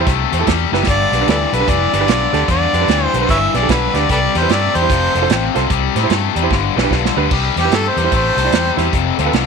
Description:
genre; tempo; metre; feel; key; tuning
electric blues shuffle; 149 BPM; 4/4; swing 64% on 8ths; C major; A4 = 439 Hz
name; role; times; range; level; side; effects
bright concert grand piano; accompaniment; 0.0-9.3 s; D4 to D5; -22 LUFS; right 12 dB; none
biting overdriven guitar; riff; 0.0-9.5 s; F2 to A3; -18 LUFS; left 15 dB; none
fingered electric bass; bass; 0.0-9.5 s; F1 to A2; -20 LUFS; left 1 dB; none
warm soul drum kit; drums; 0.1-9.5 s; crash cymbal, hi-hat, kick drum, snare drum; -20 LUFS; right 4 dB; none
warm harmonica; melody; 0.9-8.9 s; G4 to E5; -18 LUFS; right 4 dB; overdrive, slapback echo
room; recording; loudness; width
light reverb; 1960s-style stereo with parts hard left and right; -13 LUFS; side -5 dB against mid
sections
0.0-7.3 A section; 7.3-9.5 B section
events
drum fill 0.7, 6.5-7.3; harmonica solo 7.3-9.5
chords
0.0 C; 0.9 G; 4.1 C; 4.9 F; 5.7 C; 6.5 G; 7.3 C; 8.9 F

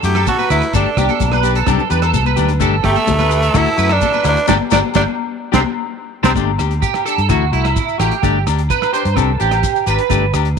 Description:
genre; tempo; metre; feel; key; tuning
highlife guitar band; 128 BPM; 4/4; straight; G major; A4 = 441 Hz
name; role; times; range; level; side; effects
raspy tenor saxophone; melody; 0.0-6.3 s; A3 to G4; -19 LUFS; right 2 dB; none
clean electric guitar; accompaniment; 0.0-10.5 s; E3 to G4; -22 LUFS; left 14 dB; none
electric guitar at the edge of break-up; arpeggios; 0.0-10.3 s; D4 to D5; -19 LUFS; right 14 dB; ensemble chorus, slapback echo
fingered electric bass; bass; 0.0-10.5 s; G1 to G2; -17 LUFS; equal; none
warm soul drum kit; drums; 0.0-10.6 s; hi-hat, kick drum, rim click, snare drum; -22 LUFS; right 4 dB; none
congas; percussion; 0.0-6.3 s; none; -24 LUFS; left 14 dB; none
shekere; percussion; 0.0-10.4 s; none; -27 LUFS; left 7 dB; none
agogo bells; percussion; 0.2-10.5 s; none; -24 LUFS; left 16 dB; none
room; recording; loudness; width
light reverb, small room ambience; 1960s-style stereo with parts hard left and right; -13 LUFS; side -6 dB against mid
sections
0.0-6.4 A section; 6.4-10.6 B section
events
band accent 4.5-6.4; drum fill 5.4-6.4; clean electric guitar solo 6.4-10.6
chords
0.0 Dadd9; 0.7 Gsus2; 1.7 Csus2; 2.6 Gsus2; 3.5 Dadd9; 4.5 Gsus2; 5.4 Csus2; 6.4 Gsus2; 7.3 Dadd9; 8.2 Gsus2; 9.2 Csus2

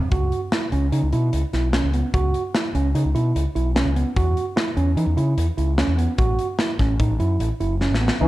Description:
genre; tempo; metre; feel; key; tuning
progressive instrumental, band music in an uneven meter; 148 BPM; 5/4; straight; A lydian; A4 = 440 Hz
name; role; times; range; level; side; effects
tine electric piano; arpeggios; 0.0-8.3 s; B3 to F#4; -24 LUFS; right 4 dB; none
overdriven fingered electric bass; bass; 0.1-8.3 s; F#1 to E3; -20 LUFS; equal; none
modern studio drum kit; drums; 0.1-8.2 s; hi-hat, kick drum, snare drum; -25 LUFS; equal; none
warm analog pad; accompaniment; 8.2-8.3 s; E3 to D#4; -17 LUFS; left 3 dB; chorus
room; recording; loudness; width
light reverb, small room ambience; none; -19 LUFS; side -16 dB against mid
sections
0.0-8.2 A section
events
drum fill 7.8-8.2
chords
0.1 C#m; 4.2 Esus2; 6.2 A

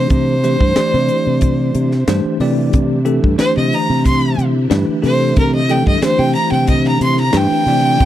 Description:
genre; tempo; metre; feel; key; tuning
electric jazz fusion; 91 BPM; 4/4; straight; C major; A4 = 439 Hz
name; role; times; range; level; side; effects
bright violin; melody; 0.0-8.1 s; Bb4 to C6; -18 LUFS; right 1 dB; none
bell-like tine electric piano; accompaniment; 0.0-8.1 s; E3 to D5; -18 LUFS; left 1 dB; fast stereo tremolo
fingered electric bass; bass; 0.0-8.1 s; G2 to C3; -16 LUFS; equal; none
string machine, violins; sustained chords; 0.1-8.1 s; D3 to E4; -25 LUFS; equal; ensemble chorus
tight funk drum kit; drums; 0.1-8.1 s; hi-hat, kick drum, snare drum; -17 LUFS; equal; none
room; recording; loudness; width
little or no reverb; dry, close 1970s-style studio recording; -12 LUFS; side -12 dB against mid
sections
0.0-8.1 A section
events
violin solo 0.0-8.1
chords
0.0 Cadd9

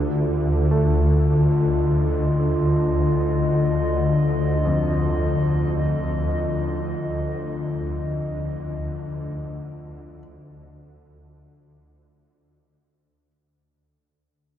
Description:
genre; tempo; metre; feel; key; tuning
dark ambient drone; free time; none; none; unclear; A4 = 440 Hz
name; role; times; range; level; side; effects
dark analog pad; sustained chords; 0.0-13.3 s; D3 to Eb5; -23 LUFS; left 2 dB; wide subtle chorus
swarming drone; drone; 0.0-13.4 s; D2 to D3; -23 LUFS; equal; built-in reverb
clear grand piano; arpeggios; 0.7-13.3 s; F2 to A3; -33 LUFS; right 2 dB; tape echo
room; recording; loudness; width
wet cathedral reverb, RT60 7.2 s; dark, warm production; -20 LUFS; side -10 dB against mid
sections
0.0-13.3 A section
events
fade-out 3.4-13.3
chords
0.0 Ebsus2/D

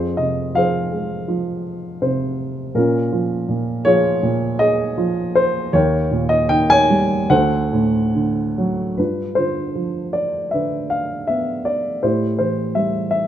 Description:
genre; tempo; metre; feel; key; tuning
classical, lyrical solo piano; 69-83 BPM; 4/4; rubato; unclear; A4 = 441 Hz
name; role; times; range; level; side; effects
dark baby grand piano; solo; 0.0-13.3 s; D2 to Ab5; -17 LUFS; equal; none
room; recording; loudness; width
light reverb; close, detailed microphones; -17 LUFS; side -10 dB against mid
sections
0.0-9.0 A section; 9.0-13.3 B section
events
grand piano fill 1.7-2.8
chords
0.0 Fm; 2.8 Bbm7; 5.7 Eb7; 7.3 D7; 9.0 G7; 12.0 Am7

